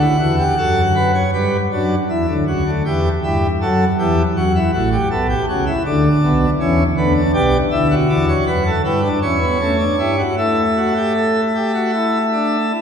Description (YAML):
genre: classical, baroque-style 3-part fugue for pipe organ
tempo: 79 BPM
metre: 4/4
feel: straight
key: G major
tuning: A4 = 444 Hz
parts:
  - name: pipe organ, plenum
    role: solo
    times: 0.0-12.8 s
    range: A1 to F#5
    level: -14 LUFS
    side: equal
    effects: none
room: wet church reverb, RT60 3.7 s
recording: heard from further back in the room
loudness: -14 LUFS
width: side -7 dB against mid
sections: 0.0-1.3 A section; 1.3-12.8 B section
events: none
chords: 0.0 D (rootless); 1.3 G; 2.9 Emadd9; 4.4 F#m; 5.9 Bm; 7.3 G/B; 8.8 Em; 10.4 A5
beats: 0.57 | 1.33 2.09 2.85 3.61 | 4.36 5.11 5.85 6.60 | 7.34 8.09 8.84 9.60 | 10.38 11.15 11.94 12.71